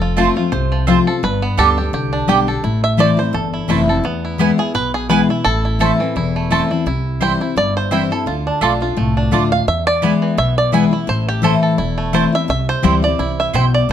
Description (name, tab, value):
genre	bluegrass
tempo	170 BPM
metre	4/4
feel	swing 55% on 8ths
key	A minor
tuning	A4 = 440 Hz
part	bluegrass banjo	melody	0.0-13.9 s	E3 to F5	-20 LUFS	right 3 dB	plate reverb
part	picked steel-string acoustic guitar	accompaniment	0.0-13.9 s	E2 to G4	-17 LUFS	left 4 dB	none
part	upright bass	bass	0.0-13.9 s	E1 to E2	-21 LUFS	equal	none
part	mandolin	stabs	0.2-13.6 s	A3 to A5	-18 LUFS	right 8 dB	none
room	moderate studio reverb, RT60 0.6 s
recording	close, detailed microphones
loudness	-14 LUFS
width	side -9 dB against mid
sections	0.0-4.0 A section; 4.0-13.9 A section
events	five-string banjo solo 0.0-13.9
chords	0.0 F; 1.2 G; 2.6 Am; 4.0 E; 5.5 Am; 6.9 C; 8.3 Dm; 9.7 E; 11.1 Am; 12.5 C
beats	0.18 0.53 0.88 | 1.23 1.58 1.94 2.29 | 2.64 2.99 3.34 3.70 | 4.05 4.40 4.75 5.11 | 5.46 5.81 6.16 6.51 | 6.87 7.22 7.57 7.92 | 8.27 8.62 8.98 9.33 | 9.68 10.03 10.38 10.73 | 11.09 11.44 11.79 12.14 | 12.49 12.84 13.19 13.54 | 13.89